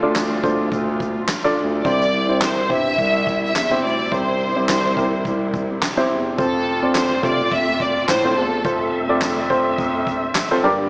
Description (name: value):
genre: piano-driven pop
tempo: 106 BPM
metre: 4/4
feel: swing 56% on 16ths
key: unclear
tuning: A4 = 440 Hz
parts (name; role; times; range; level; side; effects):
- warm upright piano; accompaniment; 0.0-10.9 s; G2 to D5; -21 LUFS; equal; none
- warm studio string section; sustained chords; 0.0-10.9 s; C3 to E5; -28 LUFS; equal; none
- warm bass clarinet; bass; 0.0-10.9 s; C2 to C3; -24 LUFS; equal; none
- soft-mallet drum kit; drums; 0.2-10.5 s; handclaps, kick drum, snare drum; -25 LUFS; equal; none
- warm studio violin section; melody; 1.9-8.9 s; A4 to E5; -21 LUFS; equal; none
room: moderate concert hall reverb, RT60 2.1 s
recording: small speaker sound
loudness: -17 LUFS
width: side -33 dB against mid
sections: 0.0-10.9 A section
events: none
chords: 0.0 Dm; 1.9 C; 6.4 F